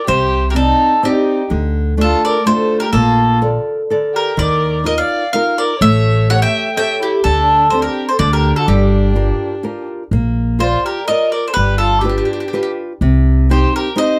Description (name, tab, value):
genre	italian folk, Italian serenade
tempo	126 BPM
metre	3/4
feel	straight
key	G minor, Bb major from 10.1 s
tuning	A4 = 440 Hz
part	mandolin	melody	0.0-14.2 s	G4 to G5	-19 LUFS	equal	none
part	dark violin	second line	0.0-14.2 s	D4 to E5	-25 LUFS	equal	none
part	nylon-string guitar	accompaniment	0.1-14.2 s	C3 to D5	-21 LUFS	equal	none
part	upright bass	bass	0.1-13.6 s	G1 to Eb2	-18 LUFS	equal	none
room	light reverb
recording	close, detailed microphones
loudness	-15 LUFS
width	mono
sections	0.0-10.1 A section; 10.1-14.2 B section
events	none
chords	0.1 Cmadd9; 1.5 Dm; 2.9 Bbmaj7; 4.4 Ebsus2; 5.8 A7; 7.2 D7sus4; 8.2 Dsus4; 8.7 Gm7; 10.1 Bb; 11.6 G7; 13.0 Cm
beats	| 0.09 0.56 1.04 | 1.51 1.99 2.46 | 2.94 3.42 3.90 | 4.39 4.87 5.34 | 5.82 6.29 6.77 | 7.24 7.71 8.19 | 8.67 9.15 9.64 | 10.12 10.60 11.08 | 11.57 12.05 12.53 | 13.01 13.49 13.97